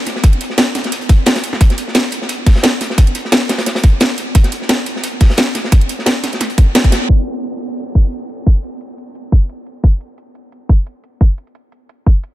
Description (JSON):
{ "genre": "drum and bass", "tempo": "175 BPM", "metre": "4/4", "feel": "swing 54% on 16ths", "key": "none", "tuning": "none", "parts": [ { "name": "crunchy breakbeat drum kit", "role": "drums", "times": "0.1-7.0 s", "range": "hi-hat, snare drum", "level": "-22 LUFS", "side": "equal", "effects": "high-pass filter on hats, high-pass filter on snare, high-pass filter on room" }, { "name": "drum and bass drum kit", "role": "drums", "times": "0.1-12.3 s", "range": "hi-hat, snare drum", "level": "-17 LUFS", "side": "equal", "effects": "overdrive" }, { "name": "electronic kick drum", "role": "drums", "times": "0.2-12.1 s", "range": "none", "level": "-9 LUFS", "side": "equal", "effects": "none" } ], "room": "light reverb, studio ambience", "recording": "low-pass filter", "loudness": "-12 LUFS", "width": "side -15 dB against mid", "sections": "0.0-7.1 A section; 7.1-12.3 B section", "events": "drop 0.0-7.1; band accent 6.8; filter sweep 7.1-12.3", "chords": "none" }